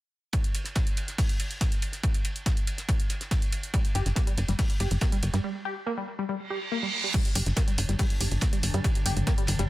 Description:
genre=driving peak-time techno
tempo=141 BPM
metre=4/4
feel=straight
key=G minor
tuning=A4 = 440 Hz
part: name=cloth-damped thuddy drum kit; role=drums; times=0.3-9.7 s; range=hi-hat, ride cymbal, snare drum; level=-39 LUFS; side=right 1 dB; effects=sidechain pumping on cymbals, high-pass filter on cymbals, sidechain pumping on hats, high-pass filter on hats, high-pass filter on snare, high-pass filter on room
part: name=electronic kick drum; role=drums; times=0.3-9.4 s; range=none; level=-26 LUFS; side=equal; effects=none
part: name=punchy analog drum machine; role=drums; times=0.3-9.7 s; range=crash cymbal, hi-hat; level=-34 LUFS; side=right 1 dB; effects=none
part: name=tight sequenced synth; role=riff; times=3.7-9.6 s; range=G3 to G4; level=-33 LUFS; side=left 1 dB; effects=chorus, sidechain pumping, tape echo
part: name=tight sequencer bass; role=bass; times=4.0-9.7 s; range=G1 to G2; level=-26 LUFS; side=equal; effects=sidechain pumping
part: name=reverse cymbal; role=sound effects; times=6.5-7.1 s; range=none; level=-30 LUFS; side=right 4 dB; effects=none
part: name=metallic inharmonic drone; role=drone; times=7.5-9.7 s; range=G2 to D3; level=-36 LUFS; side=left 1 dB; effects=chorus, built-in reverb, sidechain pumping
room=studio ambience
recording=none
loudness=-25 LUFS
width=side -17 dB against mid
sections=0.3-7.1 A section; 7.1-9.7 B section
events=break 5.4-7.1; reverse cymbal 6.5-7.1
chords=0.3 N.C.; 7.1 G5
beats=| 0.33 0.76 1.18 1.61 | 2.04 2.46 2.89 3.31 | 3.74 4.16 4.59 5.01 | 5.44 5.87 6.29 6.72 | 7.14 7.57 7.99 8.42 | 8.84 9.27

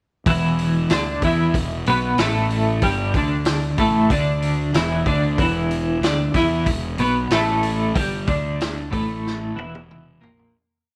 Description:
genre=psychedelic rock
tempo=93 BPM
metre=4/4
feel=straight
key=unclear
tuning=A4 = 440 Hz
part: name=twelve-string electric guitar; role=riff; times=0.3-10.5 s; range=E2 to E4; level=-22 LUFS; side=equal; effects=tremolo, double-tracked
part: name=fuzz fingered electric bass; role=bass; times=0.3-10.5 s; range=E1 to E2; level=-29 LUFS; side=equal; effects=overdrive
part: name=vintage drum kit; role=drums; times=0.3-10.5 s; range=hi-hat, kick drum, snare drum, toms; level=-27 LUFS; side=equal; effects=none
room=light reverb, small room ambience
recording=none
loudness=-20 LUFS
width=mono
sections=0.3-10.5 riff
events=fade-out 8.0-10.5; drum fill 9.3-10.5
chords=0.3 E5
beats=| 0.26 0.90 1.53 2.17 | 2.81 3.45 4.09 4.74 | 5.38 6.02 6.67 7.31 | 7.96 8.61 9.25 9.90

